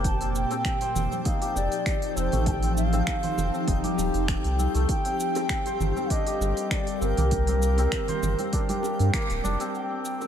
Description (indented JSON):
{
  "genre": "organic downtempo",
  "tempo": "99 BPM",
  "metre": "4/4",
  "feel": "swing 53% on 16ths",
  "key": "unclear",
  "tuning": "A4 = 440 Hz",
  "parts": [
    { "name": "mellow bansuri", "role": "melody", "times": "0.0-10.3 s", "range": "Bb4 to A5", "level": "-31 LUFS", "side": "right 1 dB", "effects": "digital delay" },
    { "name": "ethereal airy pad", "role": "sustained chords", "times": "0.0-10.3 s", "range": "C3 to A5", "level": "-31 LUFS", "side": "left 2 dB", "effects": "ensemble chorus, built-in reverb, sidechain pumping" },
    { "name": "santur", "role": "arpeggios", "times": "0.0-10.3 s", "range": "A3 to C5", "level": "-32 LUFS", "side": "left 3 dB", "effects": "low-pass filter, digital delay" },
    { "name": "warm sub bass", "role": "bass", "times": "0.0-9.6 s", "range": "D1 to G2", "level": "-25 LUFS", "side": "equal", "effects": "tube saturation" },
    { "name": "deep house drum kit", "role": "drums", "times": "0.0-10.3 s", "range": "cabasa, finger snaps, hi-hat", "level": "-34 LUFS", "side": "right 1 dB", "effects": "none" },
    { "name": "electronic kick drum", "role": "drums", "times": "0.0-9.3 s", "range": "none", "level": "-28 LUFS", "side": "equal", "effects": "none" },
    { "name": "twinkling granular texture", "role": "texture", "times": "0.0-10.3 s", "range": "F4 to G5", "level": "-38 LUFS", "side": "right 1 dB", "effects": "built-in reverb" },
    { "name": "bongos and congas", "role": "percussion", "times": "0.5-10.3 s", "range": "none", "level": "-35 LUFS", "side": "right 5 dB", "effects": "none" }
  ],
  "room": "light reverb, digital ambience",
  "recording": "none",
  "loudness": "-23 LUFS",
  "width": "side -9 dB against mid",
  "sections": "0.0-9.7 A section",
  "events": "filter sweep on santur 0.0-9.7; band accent 9.1-9.4",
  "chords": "0.0 F7; 4.9 Gm7; 9.7 Cm7"
}